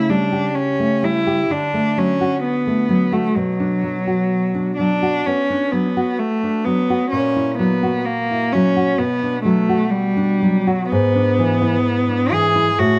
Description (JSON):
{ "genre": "romantic duo for cello and classical guitar", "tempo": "64 BPM", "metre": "4/4", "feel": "rubato", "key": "unclear", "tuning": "A4 = 440 Hz", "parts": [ { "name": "rich cello", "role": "melody", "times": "0.0-13.0 s", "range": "F#3 to G#4", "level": "-20 LUFS", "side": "equal", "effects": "none" }, { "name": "nylon-string guitar", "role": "accompaniment", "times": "0.0-13.0 s", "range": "G#2 to G4", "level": "-22 LUFS", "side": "equal", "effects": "none" } ], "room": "moderate spring reverb, RT60 2.5 s", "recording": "none", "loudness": "-18 LUFS", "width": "mono", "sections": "0.0-13.0 A section", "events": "none", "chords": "0.0 A7/C#; 1.5 D; 3.4 Bm; 7.1 F#7/A#; 9.0 Bm; 10.9 E7/G#" }